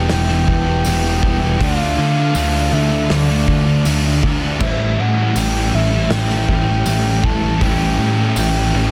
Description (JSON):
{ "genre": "rock, shoegaze and dream pop", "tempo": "80 BPM", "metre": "4/4", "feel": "straight", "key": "A mixolydian", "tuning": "A4 = 439 Hz", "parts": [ { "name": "soft octave-layered synth lead", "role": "melody", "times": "0.0-8.9 s", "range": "D5 to A5", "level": "-26 LUFS", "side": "equal", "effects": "chorus, slapback echo" }, { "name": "overdriven electric guitar", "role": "riff", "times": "0.0-8.9 s", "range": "A2 to F4", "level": "-27 LUFS", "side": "equal", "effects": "reverse reverb" }, { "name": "raw garage guitar", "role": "riff", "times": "0.0-8.9 s", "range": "A2 to F4", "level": "-26 LUFS", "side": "equal", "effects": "overdrive" }, { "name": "thick fuzz guitar", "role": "riff", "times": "0.0-8.9 s", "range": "E2 to D4", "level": "-24 LUFS", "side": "equal", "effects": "distortion, analog chorus" }, { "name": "fuzz picked electric bass", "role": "bass", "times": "0.0-8.9 s", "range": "E1 to D3", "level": "-20 LUFS", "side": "equal", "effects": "overdrive" }, { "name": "loose indie drum kit", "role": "drums", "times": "0.1-8.5 s", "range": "crash cymbal, hi-hat, kick drum, snare drum", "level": "-25 LUFS", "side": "equal", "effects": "none" }, { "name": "tambourine", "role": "percussion", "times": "0.8-8.5 s", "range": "none", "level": "-31 LUFS", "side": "equal", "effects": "none" } ], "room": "little or no reverb", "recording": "dense, heavily limited modern master", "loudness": "-16 LUFS", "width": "mono", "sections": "0.0-8.9 A section", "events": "none", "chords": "0.0 Em; 1.6 Dm; 4.6 A7" }